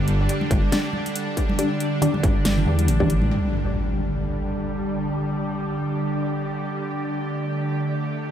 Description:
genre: deep dubstep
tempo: 139 BPM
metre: 4/4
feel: swing 56% on 16ths, half-time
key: unclear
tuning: A4 = 440 Hz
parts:
  - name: bowed-like drone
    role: sustained chords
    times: 0.0-8.3 s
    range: D3 to G4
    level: -25 LUFS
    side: right 1 dB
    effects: built-in reverb
  - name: dark detuned saw bass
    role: bass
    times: 0.0-3.3 s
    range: G1 to E2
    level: -22 LUFS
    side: equal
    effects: none
  - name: dubstep drum kit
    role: drums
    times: 0.1-3.4 s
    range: crash cymbal, hi-hat, snare drum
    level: -27 LUFS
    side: equal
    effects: low-pass filter on hats, low-pass filter on snare, low-pass filter on cymbals
  - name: congas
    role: percussion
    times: 0.4-3.3 s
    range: none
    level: -28 LUFS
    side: right 2 dB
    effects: dub echo
  - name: electronic kick drum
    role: drums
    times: 0.5-3.1 s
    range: none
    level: -23 LUFS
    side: equal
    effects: distortion
  - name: filtered dub chord stab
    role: stabs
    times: 0.7-3.2 s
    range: D4 to D5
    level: -29 LUFS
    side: left 4 dB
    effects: phaser, analog chorus, cassette tape, dub echo
  - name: impact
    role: sound effects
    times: 3.3-5.0 s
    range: none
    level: -29 LUFS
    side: equal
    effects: none
  - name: wind-like tuned noise texture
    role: texture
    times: 4.2-8.3 s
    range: D4 to D5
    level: -33 LUFS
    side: left 1 dB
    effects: built-in reverb
room: light reverb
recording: none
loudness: -21 LUFS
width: side -10 dB against mid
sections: 0.0-3.3 A section; 3.3-8.3 B section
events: drop 0.0-3.3; impact 3.3-5.0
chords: 0.0 G5

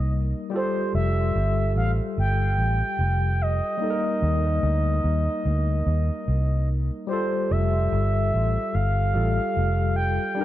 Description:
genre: lovers rock reggae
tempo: 73 BPM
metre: 4/4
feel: swing 59% on 16ths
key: F major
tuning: A4 = 440 Hz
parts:
  - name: reedy FM lead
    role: melody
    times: 0.0-10.4 s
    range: C5 to G5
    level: -28 LUFS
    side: right 1 dB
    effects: chorus, tape echo
  - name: barky tine electric piano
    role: accompaniment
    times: 0.0-10.4 s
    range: G3 to Bb4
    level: -29 LUFS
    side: left 2 dB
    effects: overdrive, medium stereo tremolo, dub echo
  - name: vintage muted fingered electric bass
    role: bass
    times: 0.0-10.2 s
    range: F1 to Eb2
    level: -22 LUFS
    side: equal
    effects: none
room: digital ambience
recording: none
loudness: -21 LUFS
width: side -14 dB against mid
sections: 0.0-10.4 A section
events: none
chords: 0.0 Eb; 0.5 Fmaj9; 3.8 Ebmaj7; 7.1 Fmaj9

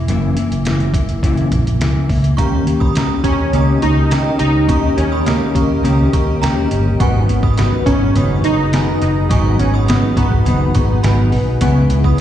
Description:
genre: indie pop, bedroom pop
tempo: 104 BPM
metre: 4/4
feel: straight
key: unclear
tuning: A4 = 440 Hz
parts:
  - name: mellow electric guitar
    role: accompaniment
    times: 0.0-12.2 s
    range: F#2 to G4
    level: -19 LUFS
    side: left 2 dB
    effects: ensemble chorus, warbly pitch drift, plate reverb, slapback echo
  - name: vintage muted fingered electric bass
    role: bass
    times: 0.0-12.2 s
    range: F#1 to D#2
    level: -16 LUFS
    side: equal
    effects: none
  - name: lo-fi sampler-style drum kit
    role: drums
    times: 0.1-12.2 s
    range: hi-hat, kick drum, snare drum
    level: -19 LUFS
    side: equal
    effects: none
  - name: warm analog keys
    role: melody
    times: 2.4-12.2 s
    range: A#3 to D#4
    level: -19 LUFS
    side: right 1 dB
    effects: analog chorus, slapback echo, plate reverb
  - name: synth chime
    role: second line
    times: 2.4-12.2 s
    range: G5 to D#6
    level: -26 LUFS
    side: right 7 dB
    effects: ensemble chorus, wide subtle chorus, slapback echo, plate reverb
  - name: granular cloud pad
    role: sustained chords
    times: 2.8-12.2 s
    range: C#4 to F#5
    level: -26 LUFS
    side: equal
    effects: built-in reverb, plate reverb
room: light reverb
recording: live gig heard through the venue's PA, recital hall reverb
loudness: -12 LUFS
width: side -11 dB against mid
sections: 0.0-2.4 A section; 2.4-12.2 B section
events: none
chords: 0.0 F#7; 2.4 D#7; 7.0 G#m7; 11.6 C#m7

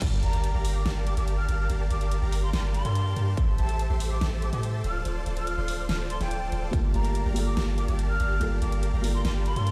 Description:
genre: future bass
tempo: 143 BPM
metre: 4/4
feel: half-time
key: G dorian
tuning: A4 = 437 Hz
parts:
  - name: felt-muted upright piano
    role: accompaniment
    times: 0.0, 6.7-9.7 s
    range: G3 to A4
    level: -37 LUFS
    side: equal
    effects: sidechain pumping, tape echo
  - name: dense compressed supersaw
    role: riff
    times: 0.0-9.7 s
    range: F4 to C6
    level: -37 LUFS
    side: equal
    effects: sidechain pumping
  - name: long sustained 808-style bass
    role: bass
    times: 0.0-9.7 s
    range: D1 to A2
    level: -29 LUFS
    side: equal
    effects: sidechain pumping
  - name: big-room dance drum kit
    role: drums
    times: 0.0-9.7 s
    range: crash cymbal, hi-hat, ride cymbal, snare drum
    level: -38 LUFS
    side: equal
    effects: none
  - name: electronic kick drum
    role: drums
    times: 0.0-0.1, 3.4-3.5, 6.7-6.8 s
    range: none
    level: -28 LUFS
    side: equal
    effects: none
  - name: sub drop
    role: sound effects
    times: 0.0-1.7 s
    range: none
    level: -38 LUFS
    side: equal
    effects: none
  - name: breathy mellow jazz flute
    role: melody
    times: 0.2-9.7 s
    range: G5 to F6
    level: -38 LUFS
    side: equal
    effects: sidechain pumping, delay
room: little or no reverb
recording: played on a big sound system in a bare room, stone room reverb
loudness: -27 LUFS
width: mono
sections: 0.0-9.7 A section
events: drop 0.0-9.7; impact 0.0-1.7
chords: 0.0 Gm9; 3.4 Am7; 4.8 Dm7; 6.7 Gm9

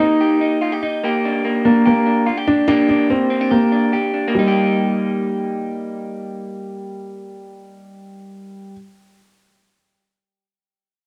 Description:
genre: indie pop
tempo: 145 BPM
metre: 4/4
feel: straight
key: Eb major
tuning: A4 = 440 Hz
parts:
  - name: dark upright piano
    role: melody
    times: 0.0-8.7 s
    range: G3 to Eb4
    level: -20 LUFS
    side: equal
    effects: plate reverb
  - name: electric guitar through a small old amp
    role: arpeggios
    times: 0.0-8.9 s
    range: Bb3 to G4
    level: -23 LUFS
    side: equal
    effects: plate reverb
room: moderate studio ambience, RT60 0.5 s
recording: none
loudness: -17 LUFS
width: mono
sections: 0.0-4.3 A section; 4.3-7.7 B section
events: none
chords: 0.0 Eb; 1.0 Gm; 4.3 Eb

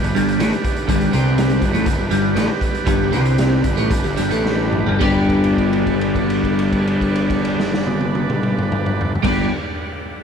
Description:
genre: psychedelic rock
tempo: 105-124 BPM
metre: 4/4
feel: straight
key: G major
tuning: A4 = 440 Hz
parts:
  - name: combo organ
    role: sustained chords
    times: 0.0-9.5 s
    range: D3 to D5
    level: -25 LUFS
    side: right 5 dB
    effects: none
  - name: twelve-string electric guitar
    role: riff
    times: 0.0-9.5 s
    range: G2 to G4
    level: -19 LUFS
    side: left 1 dB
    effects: phaser, double-tracked left and right
  - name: fuzz picked electric bass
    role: bass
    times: 0.0-9.5 s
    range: G1 to C2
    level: -23 LUFS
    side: equal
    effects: overdrive
  - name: raw garage drum kit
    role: drums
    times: 0.0-9.4 s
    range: crash cymbal, hi-hat, kick drum, snare drum, toms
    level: -22 LUFS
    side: equal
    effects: none
room: light reverb, studio reverb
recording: none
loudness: -16 LUFS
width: side -7 dB against mid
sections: 0.0-5.0 A section; 5.0-9.6 B section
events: slowing down 0.9-5.0; drum fill 4.4-5.0; held note 5.0-9.2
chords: 0.0 G

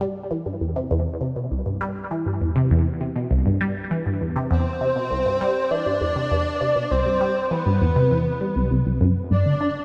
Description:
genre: ambient, sequencer-driven space music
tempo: 100 BPM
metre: 4/4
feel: straight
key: unclear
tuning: A4 = 440 Hz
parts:
  - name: resonant blip pluck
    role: riff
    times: 0.0-9.7 s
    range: C2 to D4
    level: -24 LUFS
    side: equal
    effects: phaser, lush chorus, analog delay
  - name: breathy flute-like synth lead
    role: melody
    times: 4.5-9.8 s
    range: B4 to D5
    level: -25 LUFS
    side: equal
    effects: ensemble chorus, analog delay
  - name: fat analog bass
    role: bass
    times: 9.3-9.8 s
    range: none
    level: barely audible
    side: none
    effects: none
room: moderate lush hall reverb, RT60 2.6 s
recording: none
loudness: -22 LUFS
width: mono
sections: 0.0-9.3 A section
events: none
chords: 0.0 Cmaj7; 9.3 G5

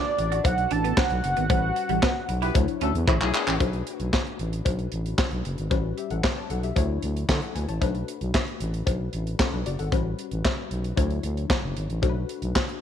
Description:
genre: early-eighties boogie funk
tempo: 114 BPM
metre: 4/4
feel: straight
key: B minor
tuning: A4 = 439 Hz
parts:
  - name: fat analog lead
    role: melody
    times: 0.0-3.1 s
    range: D5 to A5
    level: -27 LUFS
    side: right 1 dB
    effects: chorus, phaser
  - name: funky polysynth comp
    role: accompaniment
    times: 0.0-12.8 s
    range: F#3 to A5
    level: -34 LUFS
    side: left 12 dB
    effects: chorus
  - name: clean electric guitar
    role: riff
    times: 0.2-3.6 s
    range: G3 to F#4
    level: -31 LUFS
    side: right 15 dB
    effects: ensemble chorus
  - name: growling FM bass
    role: bass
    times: 0.2-12.5 s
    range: F#1 to D3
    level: -27 LUFS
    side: equal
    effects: none
  - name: tight funk drum kit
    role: drums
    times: 0.2-12.8 s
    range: handclaps, hi-hat, kick drum, snare drum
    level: -26 LUFS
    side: right 1 dB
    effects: none
  - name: cowbell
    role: percussion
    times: 0.4-12.7 s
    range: none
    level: -34 LUFS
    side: left 14 dB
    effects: none
  - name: warm horn section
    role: second line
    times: 2.4-3.7 s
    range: G#3 to B4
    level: -32 LUFS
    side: left 12 dB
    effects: tape echo
room: light reverb, studio reverb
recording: 1960s-style stereo with parts hard left and right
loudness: -23 LUFS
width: side -9 dB against mid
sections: 0.0-3.6 A section; 3.6-12.8 B section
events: band accent 1.5-3.6; drum fill 3.1-3.6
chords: 0.0 Bm7; 1.5 A13; 2.6 Dmaj9; 3.1 Amaj7; 3.6 Bm7; 5.7 A13; 6.8 Dmaj9; 7.8 Bm7; 9.9 A13; 11.0 Dmaj9; 12.0 Bm7

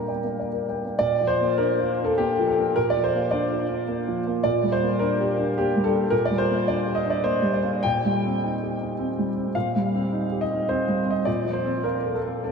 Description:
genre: neoclassical minimalist piano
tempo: 105 BPM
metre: 3/4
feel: uneven beats, rubato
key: Bb major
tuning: A4 = 443 Hz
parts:
  - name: warm upright piano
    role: solo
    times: 0.0-12.5 s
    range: Bb2 to Bb5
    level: -21 LUFS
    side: equal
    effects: wide subtle chorus, diffuse ambient delay
room: wet lush hall reverb, RT60 2.7 s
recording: dreamy mix soaked in reverb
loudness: -21 LUFS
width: side -5 dB against mid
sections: 0.0-1.0 A section; 1.0-12.5 B section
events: none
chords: 0.0 Gm/Bb; 1.0 Bb; 4.4 Gm/Bb; 7.8 Cm/Bb; 11.3 F/Bb

